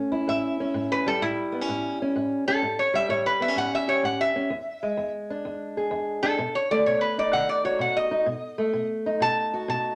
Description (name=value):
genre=acoustic country blues, solo or duo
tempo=128 BPM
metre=4/4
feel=swing 67% on 8ths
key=unclear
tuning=A4 = 440 Hz
part: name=fingerpicked old ladder-braced acoustic guitar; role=accompaniment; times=0.0-9.9 s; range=E2 to G#4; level=-29 LUFS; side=equal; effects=none
part: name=lap resonator guitar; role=melody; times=0.3-9.9 s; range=E4 to A5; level=-27 LUFS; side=equal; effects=none
room=wet studio reverb, RT60 0.7 s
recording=none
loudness=-26 LUFS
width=mono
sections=0.0-9.9 A section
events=resonator guitar played with a steel bar solo 0.0-9.9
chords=0.0 A7; 4.5 E7; 6.4 B7